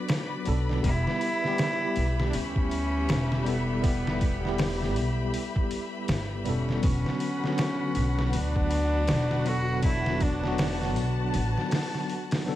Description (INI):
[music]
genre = trip hop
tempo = 80 BPM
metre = 4/4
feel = swing 59% on 16ths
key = E dorian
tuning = A4 = 442 Hz
[part]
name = bell-like tine electric piano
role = accompaniment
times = 0.0-12.6 s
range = D3 to A4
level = -32 LUFS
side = equal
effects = medium stereo tremolo, tape echo
[part]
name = clear studio string section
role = sustained chords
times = 0.0-12.6 s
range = F#4 to B5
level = -36 LUFS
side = left 2 dB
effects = none
[part]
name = trip hop sampler-style drum kit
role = drums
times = 0.1-12.6 s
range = hi-hat, kick drum, snare drum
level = -29 LUFS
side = equal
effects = studio ambience
[part]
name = upright bass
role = bass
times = 0.5-11.5 s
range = E1 to D2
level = -28 LUFS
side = equal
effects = none
[part]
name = rich cello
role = melody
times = 0.8-11.0 s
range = B3 to F#4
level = -31 LUFS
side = equal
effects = tape echo
[sound]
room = light reverb, small room ambience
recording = vinyl crackle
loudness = -24 LUFS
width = side -14 dB against mid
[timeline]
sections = 0.0-12.6 A section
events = kick drops out 11.3-12.6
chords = 0.0 Bm; 0.8 Em; 6.8 Bm/E